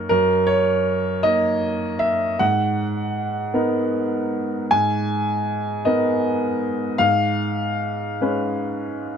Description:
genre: neoclassical minimalist piano.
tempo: 52 BPM (dotted quarters).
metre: 6/8.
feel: rubato.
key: G# minor.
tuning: A4 = 442 Hz.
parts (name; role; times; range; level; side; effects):
clear upright piano; solo; 0.0-9.2 s; F#2 to G#5; -19 LUFS; equal; none.
room: light reverb.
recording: close, detailed microphones.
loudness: -19 LUFS.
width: side -7 dB against mid.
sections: 0.0-9.2 A section.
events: none.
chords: 0.0 D#m7/F#; 2.4 G#madd9; 7.0 C#7/G#.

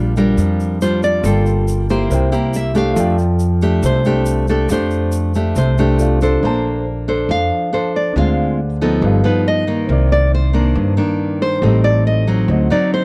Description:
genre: bossa nova.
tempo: 139 BPM.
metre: 4/4.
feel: straight.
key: F major, Bb major from 6.4 s.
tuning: A4 = 440 Hz.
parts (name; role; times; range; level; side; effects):
nylon-string guitar; accompaniment; 0.0-13.0 s; G2 to C5; -20 LUFS; equal; none.
warm concert grand piano; accompaniment; 0.0-13.0 s; C4 to A5; -28 LUFS; equal; none.
upright bass; bass; 0.0-12.7 s; G1 to G2; -19 LUFS; equal; none.
nylon-string guitar; melody; 0.2-13.0 s; A4 to F5; -23 LUFS; equal; none.
tube shaker; percussion; 0.2-6.4 s; none; -39 LUFS; equal; none.
room: little or no reverb.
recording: dry, close 1970s-style studio recording.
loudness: -16 LUFS.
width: mono.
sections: 0.0-6.4 A section; 6.4-13.0 A section.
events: nylon-string guitar solo 0.0-13.0.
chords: 0.0 Bb6; 1.2 Gm9; 2.1 C7; 3.0 F69; 6.4 Bbmaj9; 8.2 Dm7b5; 9.0 G7b13; 9.9 Cm9; 11.6 Am7b5; 12.5 D7b9.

